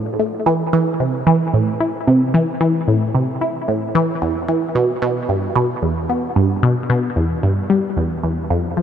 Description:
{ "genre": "ambient", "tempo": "112 BPM", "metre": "4/4", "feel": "straight", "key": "unclear", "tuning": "A4 = 440 Hz", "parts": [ { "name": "resonant blip pluck", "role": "solo", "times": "0.0-8.8 s", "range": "E2 to E4", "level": "-16 LUFS", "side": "equal", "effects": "phaser, vintage 12-bit sampler grit, analog delay" } ], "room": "moderate huge ambient reverb, RT60 8.2 s", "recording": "none", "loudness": "-16 LUFS", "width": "side -8 dB against mid", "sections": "0.0-8.8 A section", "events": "none", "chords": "none", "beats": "0.47 1.00 1.54 | 2.07 2.61 3.15 3.68 | 4.22 4.75 5.29 5.82 | 6.36 6.89 7.43 7.97 | 8.50" }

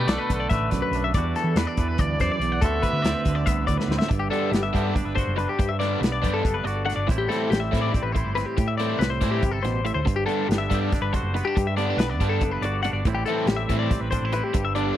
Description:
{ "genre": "math rock and midwest emo", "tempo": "282 BPM (eighths)", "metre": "7/8", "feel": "straight", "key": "G major", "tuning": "A4 = 441 Hz", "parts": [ { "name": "clear trumpet", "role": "melody", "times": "0.0-3.7 s", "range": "G4 to E5", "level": "-30 LUFS", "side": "right 2 dB", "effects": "tape echo" }, { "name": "twangy electric guitar", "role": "accompaniment", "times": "0.0-15.0 s", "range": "D2 to G4", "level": "-29 LUFS", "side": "right 6 dB", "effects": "none" }, { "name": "twelve-string electric guitar", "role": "arpeggios", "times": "0.0-15.0 s", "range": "G4 to F#5", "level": "-27 LUFS", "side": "left 6 dB", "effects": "spring reverb, tape echo" }, { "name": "hollow-body short-scale fingered electric bass", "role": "bass", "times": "0.0-14.9 s", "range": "F#1 to E3", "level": "-27 LUFS", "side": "equal", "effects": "none" }, { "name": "loose indie drum kit", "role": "drums", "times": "0.1-14.9 s", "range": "hi-hat, kick drum, snare drum", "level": "-25 LUFS", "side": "equal", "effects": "none" }, { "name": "overdriven electric guitar", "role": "riff", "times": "4.1-15.0 s", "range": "D3 to E4", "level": "-28 LUFS", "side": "equal", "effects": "none" } ], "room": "little or no reverb", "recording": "dry, close 1970s-style studio recording", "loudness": "-21 LUFS", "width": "side -12 dB against mid", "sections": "0.0-4.1 A section; 4.1-15.0 B section", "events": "drum fill 3.8-4.1", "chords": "0.0 Bm7; 1.1 Em9; 2.6 D13; 4.1 Gmaj7; 7.1 Am7; 10.1 Gmaj7; 13.0 Am7", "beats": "0.08 0.29 0.50 0.71 0.92 | 1.14 1.35 1.56 1.77 1.98 2.19 2.40 | 2.62 2.83 3.04 3.25 3.46 3.68 3.89 | 4.10 4.31 4.53 4.74 4.95 5.16 5.38 | 5.59 5.80 6.01 6.23 6.44 6.65 6.87 | 7.08 7.29 7.50 7.72 7.93 8.14 8.36 | 8.57 8.78 8.99 9.21 9.42 9.63 9.85 | 10.06 10.27 10.49 10.70 10.91 11.13 11.34 | 11.55 11.77 11.98 12.20 12.41 12.62 12.84 | 13.05 13.26 13.48 13.69 13.90 14.12 14.33 | 14.54 14.76" }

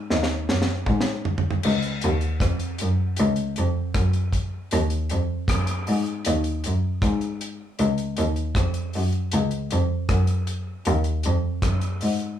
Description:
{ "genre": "dub reggae", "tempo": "78 BPM", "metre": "4/4", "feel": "straight", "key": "unclear", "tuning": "A4 = 439 Hz", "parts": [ { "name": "muted cello", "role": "bass", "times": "0.0-12.4 s", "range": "Db2 to Ab2", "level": "-22 LUFS", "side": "equal", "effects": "none" }, { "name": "deep reggae drum kit", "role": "drums", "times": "0.1-12.4 s", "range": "crash cymbal, hi-hat, kick drum, rim click, snare drum, toms", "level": "-26 LUFS", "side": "equal", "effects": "none" } ], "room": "light reverb", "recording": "studio reverb", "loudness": "-21 LUFS", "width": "side -10 dB against mid", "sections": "0.0-1.6 A section; 1.6-12.4 B section", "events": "drum fill 0.1-1.6", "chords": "none", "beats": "0.09 0.86 | 1.63 2.40 3.17 3.94 | 4.71 5.48 6.25 7.01 | 7.78 8.55 9.32 10.09 | 10.86 11.63" }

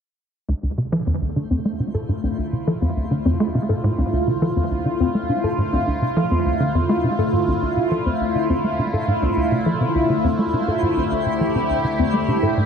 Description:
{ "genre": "ambient, sequencer-driven space music", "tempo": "103 BPM", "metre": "4/4", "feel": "straight", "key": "D minor", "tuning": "A4 = 440 Hz", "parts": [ { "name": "phased analog pad", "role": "sustained chords", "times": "0.9-12.7 s", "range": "D3 to G4", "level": "-22 LUFS", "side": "equal", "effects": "phaser, chorus" }, { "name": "soft round pluck", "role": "arpeggios", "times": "0.5-12.5 s", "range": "C4 to A4", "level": "-28 LUFS", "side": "moving between left 8 dB and equal", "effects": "chorus, auto-pan, analog delay" }, { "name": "tight sequencer bass", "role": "riff", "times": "0.5-12.7 s", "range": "D2 to A3", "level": "-22 LUFS", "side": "equal", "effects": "analog chorus, analog delay" }, { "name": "analog drone", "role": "bass", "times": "0.5-12.7 s", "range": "none", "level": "barely audible", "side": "none", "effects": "none" }, { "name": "twinkling granular texture", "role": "texture", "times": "1.1-12.7 s", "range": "C5", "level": "-38 LUFS", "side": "right 4 dB", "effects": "built-in reverb" } ], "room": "wet spring reverb, RT60 2.5 s", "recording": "echo-heavy mix", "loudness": "-18 LUFS", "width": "side -7 dB against mid", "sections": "0.5-12.7 A section", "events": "fade-in on synth texture 0.5-12.7; filter sweep on analog synth bass 0.5-12.7; filter sweep on synth arpeggio sound 0.5-12.7", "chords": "0.5 Dm7", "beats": "| 0.49 1.07 1.65 2.24 | 2.82 3.40 3.98 4.57 | 5.15 5.73 6.31 6.90 | 7.48 8.06 8.64 9.23 | 9.81 10.39 10.97 11.56 | 12.14" }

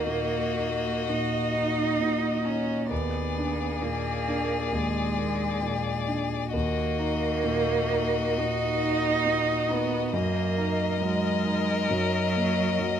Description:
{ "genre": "classical, slow romantic movement for piano quartet", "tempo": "56-70 BPM", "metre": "4/4", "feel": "rubato", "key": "Eb minor", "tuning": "A4 = 439 Hz", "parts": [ { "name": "rich violin", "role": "melody", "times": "0.0-13.0 s", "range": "D5 to Eb5", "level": "-31 LUFS", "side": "left 7 dB", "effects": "none" }, { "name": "rich cello", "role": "second line", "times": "0.0-13.0 s", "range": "Gb3 to Eb4", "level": "-29 LUFS", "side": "right 6 dB", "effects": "none" }, { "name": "rich violin", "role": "second line", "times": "0.0-13.0 s", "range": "Gb4 to Bb4", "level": "-33 LUFS", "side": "left 5 dB", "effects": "none" }, { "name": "warm concert grand piano", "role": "accompaniment", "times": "0.0-13.0 s", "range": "Eb2 to Eb4", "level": "-28 LUFS", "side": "right 1 dB", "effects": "none" } ], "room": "light reverb", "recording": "close, detailed microphones", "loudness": "-24 LUFS", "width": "side -8 dB against mid", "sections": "0.0-13.0 A section", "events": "none", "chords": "0.0 Ebm; 2.9 Bb7b9/Eb; 6.5 Ebm; 10.1 Ebm/Gb", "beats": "0.06 1.08 2.01 | 2.91 3.83 4.73 5.63 | 6.54 7.44 8.38 9.26 | 10.13 11.00 11.88 12.77" }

